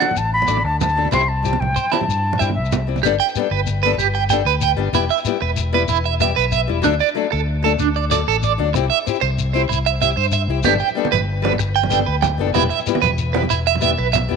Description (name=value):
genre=highlife guitar band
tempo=126 BPM (dotted quarters)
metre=12/8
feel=straight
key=G major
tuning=A4 = 442 Hz
part: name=concert flute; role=melody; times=0.0-2.9 s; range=E5 to C6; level=-20 LUFS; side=left 2 dB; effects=none
part: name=fingerpicked steel-string acoustic guitar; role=accompaniment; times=0.0-14.4 s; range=F#3 to A4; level=-23 LUFS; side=left 15 dB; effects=none
part: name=electric guitar at the edge of break-up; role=arpeggios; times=0.0-14.2 s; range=D4 to G5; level=-19 LUFS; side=right 12 dB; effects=tremolo, slapback echo
part: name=congas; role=percussion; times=0.0-3.0, 10.6-14.2 s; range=none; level=-25 LUFS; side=right 10 dB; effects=none
part: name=shekere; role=percussion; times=0.0-14.2 s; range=none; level=-26 LUFS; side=left 7 dB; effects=none
part: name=fingered electric bass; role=bass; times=0.2-14.4 s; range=E1 to G2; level=-21 LUFS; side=left 1 dB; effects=none
room=moderate plate reverb, RT60 3.5 s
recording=1960s-style stereo with parts hard left and right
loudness=-16 LUFS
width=side -5 dB against mid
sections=0.0-3.0 A section; 3.0-14.4 B section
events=none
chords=0.0 D; 1.1 C; 3.0 Gadd9; 4.9 Em; 6.8 D; 8.7 C; 10.6 Gadd9; 12.6 Em